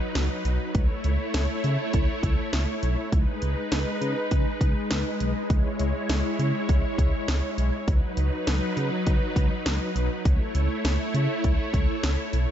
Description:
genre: synth-pop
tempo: 101 BPM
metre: 4/4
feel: straight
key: unclear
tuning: A4 = 439 Hz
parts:
  - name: string machine, violas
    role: sustained chords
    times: 0.0-12.5 s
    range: F#3 to C#5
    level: -28 LUFS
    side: equal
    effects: ensemble chorus
  - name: smooth synth bass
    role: bass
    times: 0.2-12.5 s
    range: B1 to C#3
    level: -26 LUFS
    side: equal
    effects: none
  - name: house drum kit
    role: drums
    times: 0.2-12.5 s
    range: hi-hat, kick drum, snare drum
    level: -27 LUFS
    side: equal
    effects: none
room: digital ambience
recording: nothing above 7.8 kHz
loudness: -23 LUFS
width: side -10 dB against mid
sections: 0.0-12.5 A section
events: none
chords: 0.0 B/C#; 0.7 A/C#; 3.1 G#m/C#; 5.5 C#m; 7.9 B/C#; 10.3 A/C#

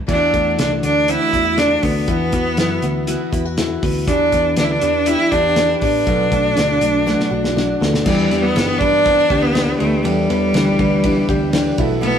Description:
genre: jangly indie pop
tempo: 120 BPM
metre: 4/4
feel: straight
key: E minor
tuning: A4 = 440 Hz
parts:
  - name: clear cello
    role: melody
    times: 0.1-12.2 s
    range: G3 to E4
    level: -17 LUFS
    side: right 1 dB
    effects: none
  - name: picked twelve-string acoustic guitar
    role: accompaniment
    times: 0.1-12.2 s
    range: B2 to G4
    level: -26 LUFS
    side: right 3 dB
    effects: none
  - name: warm upright piano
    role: accompaniment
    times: 0.1-12.2 s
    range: B3 to A4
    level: -29 LUFS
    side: right 5 dB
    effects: none
  - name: direct-recorded clean electric guitar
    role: arpeggios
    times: 0.1-12.2 s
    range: B2 to G4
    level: -22 LUFS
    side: left 6 dB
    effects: none
  - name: vintage muted picked electric bass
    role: bass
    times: 0.1-12.2 s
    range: G1 to G2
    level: -24 LUFS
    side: equal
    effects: none
  - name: cloth-damped thuddy drum kit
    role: drums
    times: 0.1-12.1 s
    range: crash cymbal, hi-hat, kick drum, ride cymbal, snare drum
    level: -23 LUFS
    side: equal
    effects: none
room: wet stone room reverb, RT60 1.3 s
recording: rough rehearsal-room recording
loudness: -14 LUFS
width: side -8 dB against mid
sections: 0.1-8.1 A section; 8.1-12.2 B section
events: drum fill 7.1-8.1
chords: 0.1 Dadd9; 2.1 Esus2; 4.1 G; 6.1 Bm7; 8.1 Em7

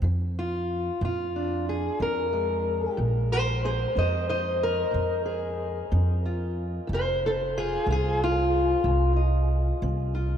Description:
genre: acoustic country blues, solo or duo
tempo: 61 BPM (dotted quarters)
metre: 12/8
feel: straight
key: unclear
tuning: A4 = 440 Hz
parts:
  - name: fingerpicked steel-string acoustic guitar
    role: melody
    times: 0.0-10.4 s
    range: F2 to Eb5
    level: -26 LUFS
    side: left 1 dB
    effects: none
  - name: upright bass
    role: bass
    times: 0.0-10.4 s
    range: F1 to F2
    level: -27 LUFS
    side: equal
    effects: none
room: wet cathedral reverb, RT60 6.1 s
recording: in a vast, echoing space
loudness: -24 LUFS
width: side -9 dB against mid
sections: 0.0-10.4 A section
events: none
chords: 0.0 Bb7; 3.0 Bbm7; 6.9 F7(no3)

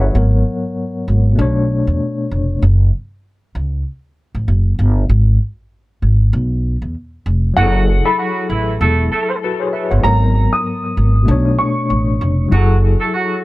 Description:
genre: hip hop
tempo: 97 BPM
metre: 4/4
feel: swing 57% on 16ths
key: F# minor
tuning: A4 = 437 Hz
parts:
  - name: mellow tine electric piano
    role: accompaniment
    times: 0.0-2.6, 7.5-13.4 s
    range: G#2 to F#5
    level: -19 LUFS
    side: left 2 dB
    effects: overdrive, fast tremolo, cassette tape, high-pass filter, low-pass filter
  - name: upright bass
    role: bass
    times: 0.0-12.9 s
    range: E1 to E2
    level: -13 LUFS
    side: equal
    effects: none
  - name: dark upright piano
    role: melody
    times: 7.6-12.0 s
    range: F#5 to D#6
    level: -20 LUFS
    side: equal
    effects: high-pass filter, low-pass filter, ping-pong delay
  - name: mellow horn section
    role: stabs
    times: 7.6-13.4 s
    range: E3 to A4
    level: -20 LUFS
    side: right 2 dB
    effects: high-pass filter, low-pass filter, ping-pong delay
room: little or no reverb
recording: dark, warm production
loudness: -13 LUFS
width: side -19 dB against mid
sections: 0.0-7.6 A section; 7.6-13.4 B section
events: none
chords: 0.1 G#m9; 1.4 Bm9; 2.6 F#5; 5.1 N.C.; 7.6 F#m9; 10.0 G#m9; 11.3 Bm9; 12.5 F#m9

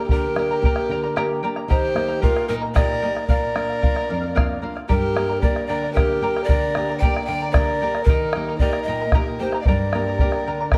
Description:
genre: andean folk, Andean ensemble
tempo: 75 BPM (dotted quarters)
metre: 6/8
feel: straight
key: G minor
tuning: A4 = 440 Hz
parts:
  - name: breathy bright large pan pipes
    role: melody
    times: 0.0-10.8 s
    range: Bb4 to G5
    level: -27 LUFS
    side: equal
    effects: none
  - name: warm violin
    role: second line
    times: 0.0-10.8 s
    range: Eb4 to D5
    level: -31 LUFS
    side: equal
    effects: none
  - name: charango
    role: accompaniment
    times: 0.0-10.8 s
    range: G4 to Bb5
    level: -32 LUFS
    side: equal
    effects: none
  - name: nylon-string guitar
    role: accompaniment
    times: 0.0-10.8 s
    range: F2 to Eb5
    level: -29 LUFS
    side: equal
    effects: none
  - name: bombo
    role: percussion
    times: 0.1-10.8 s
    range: none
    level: -23 LUFS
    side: equal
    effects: none
room: light reverb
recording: dark, warm production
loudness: -21 LUFS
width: mono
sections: 0.0-10.8 A section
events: nylon-string guitar fill 10.5-10.8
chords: 0.0 Gm; 1.7 Eb; 3.3 Bb; 4.9 Gm; 8.1 Eb; 9.7 Gm

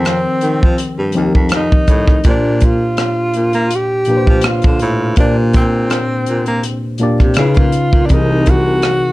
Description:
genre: R&B, neo-soul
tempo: 82 BPM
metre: 4/4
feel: swing 53% on 16ths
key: Bb major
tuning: A4 = 440 Hz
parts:
  - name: breathy tenor saxophone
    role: melody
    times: 0.0-9.1 s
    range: C4 to G4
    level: -17 LUFS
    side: equal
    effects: none
  - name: tine electric piano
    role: accompaniment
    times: 0.0-9.1 s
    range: Bb2 to D5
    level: -17 LUFS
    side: left 1 dB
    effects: none
  - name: clear baritone saxophone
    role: bass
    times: 0.0-9.0 s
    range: C2 to Bb3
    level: -18 LUFS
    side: equal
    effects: none
  - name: tight funk drum kit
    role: drums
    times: 0.0-9.0 s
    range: hi-hat, kick drum, rim click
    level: -13 LUFS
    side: equal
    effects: none
room: light reverb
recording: dark, warm production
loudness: -11 LUFS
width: side -18 dB against mid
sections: 0.0-9.1 A section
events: none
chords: 0.0 F9sus4; 2.2 Bb69; 7.4 Db9; 8.1 C7alt

